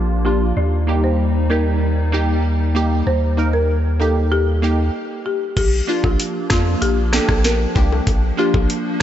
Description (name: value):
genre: dancehall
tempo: 96 BPM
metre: 4/4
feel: straight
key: Bb major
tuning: A4 = 440 Hz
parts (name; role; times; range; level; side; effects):
- hollow soft pad; sustained chords; 0.0-9.0 s; F3 to Eb4; -26 LUFS; equal; ensemble chorus, sidechain pumping, low-pass filter
- punchy sub bass; bass; 0.0-8.7 s; Bb1 to F2; -18 LUFS; equal; none
- glassy wavetable pluck; accompaniment; 0.2-9.0 s; Bb3 to Bb4; -23 LUFS; right 2 dB; chorus, low-pass filter
- folk marimba with medium mallets; melody; 0.3-8.5 s; F4 to D5; -23 LUFS; left 2 dB; low-pass filter, analog delay
- island pop drum kit; drums; 5.6-9.0 s; crash cymbal, hi-hat, kick drum, rim click, snare drum; -19 LUFS; equal; overdrive
- bongos; percussion; 5.6-8.7 s; none; -32 LUFS; left 7 dB; none
room: moderate huge ambient reverb, RT60 4.2 s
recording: dreamy mix soaked in reverb, nothing above 7.9 kHz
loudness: -16 LUFS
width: side -11 dB against mid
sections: 0.0-5.6 A section; 5.6-9.0 B section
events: filter sweep 0.0-5.6; stop 4.9-5.6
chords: 0.0 Bb; 0.6 Eb; 5.6 Bb